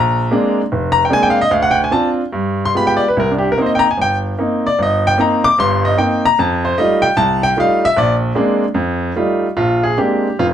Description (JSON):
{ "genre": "solo jazz", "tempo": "150 BPM", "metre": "4/4", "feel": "swing 67% on 8ths, rubato", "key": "Bb mixolydian", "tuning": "A4 = 440 Hz", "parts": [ { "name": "clear baby grand piano", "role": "solo", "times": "0.0-10.5 s", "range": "F1 to D6", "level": "-13 LUFS", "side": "equal", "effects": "none" } ], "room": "light reverb", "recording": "dark, warm production", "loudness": "-13 LUFS", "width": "side -10 dB against mid", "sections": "0.0-9.6 A section", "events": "grand piano solo 0.0-9.6", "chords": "0.0 Bb9; 1.5 Dm7; 2.3 G7b9; 3.2 Cm7; 6.4 F9; 8.0 Bb9; 8.8 F9; 9.6 Bb9", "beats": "0.34 0.73 1.13 | 1.53 1.93 2.33 2.74 | 3.15 3.56 3.97 4.37 | 4.78 5.18 5.58 5.97 | 6.37 6.76 7.16 7.55 | 7.95 8.35 8.75 9.16 | 9.57 9.98 10.39" }